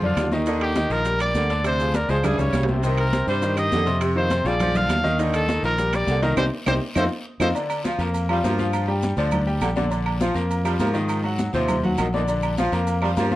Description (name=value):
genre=latin, salsa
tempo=203 BPM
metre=4/4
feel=straight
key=Bb major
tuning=A4 = 441 Hz
part: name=bright trumpet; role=melody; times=0.0-7.5 s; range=F4 to F5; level=-25 LUFS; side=equal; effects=none
part: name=clear saxophone section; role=second line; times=0.0-13.4 s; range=C3 to A3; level=-30 LUFS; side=right 1 dB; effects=none
part: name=bright grand piano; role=accompaniment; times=0.0-13.4 s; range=C3 to Bb5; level=-25 LUFS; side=left 2 dB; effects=none
part: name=fingered electric bass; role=bass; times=0.0-13.4 s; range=Bb1 to Ab2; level=-24 LUFS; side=equal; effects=none
part: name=congas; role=percussion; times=0.0-13.4 s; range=none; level=-29 LUFS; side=equal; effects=none
part: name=claves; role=percussion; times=0.2-13.2 s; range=none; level=-36 LUFS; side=right 4 dB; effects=none
part: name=guiro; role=percussion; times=0.2-13.4 s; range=none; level=-41 LUFS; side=left 3 dB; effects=none
part: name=maracas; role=percussion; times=0.2-13.4 s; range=none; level=-44 LUFS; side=right 5 dB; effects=none
part: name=timbales and agogo bells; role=percussion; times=0.2-13.4 s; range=none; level=-31 LUFS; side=right 4 dB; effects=none
room=moderate studio reverb, RT60 0.7 s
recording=worn, warbling old tape, cassette tape, warbly pitch drift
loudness=-20 LUFS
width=side -16 dB against mid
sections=0.0-7.6 A section; 7.6-13.4 B section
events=drum fill 2.2-2.8, 6.7-7.6; band accent 6.4-7.6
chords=0.5 Ebmaj7; 1.6 Dm7b5; 2.2 Db; 2.8 Cm7; 4.0 Fm7; 4.6 Bb7; 5.2 Ebmaj7; 6.4 Cm; 7.0 F7(no3); 7.6 Bb; 8.7 Gm7; 9.9 Bb; 11.1 Ab7; 12.3 Bb